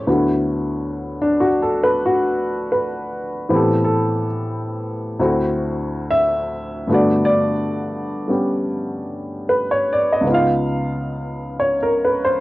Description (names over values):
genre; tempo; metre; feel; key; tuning
jazz; 71 BPM; 4/4; swing 66% on 8ths; D major; A4 = 440 Hz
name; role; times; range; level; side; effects
warm baby grand piano; accompaniment; 0.0-12.4 s; C#2 to E#5; -17 LUFS; equal; none
room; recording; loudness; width
moderate studio reverb, RT60 0.6 s; home recording on cassette; -17 LUFS; side -18 dB against mid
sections
0.1-12.4 A section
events
none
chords
0.1 D69; 3.5 Am9; 5.2 D9; 6.9 Gmaj9; 10.3 C#9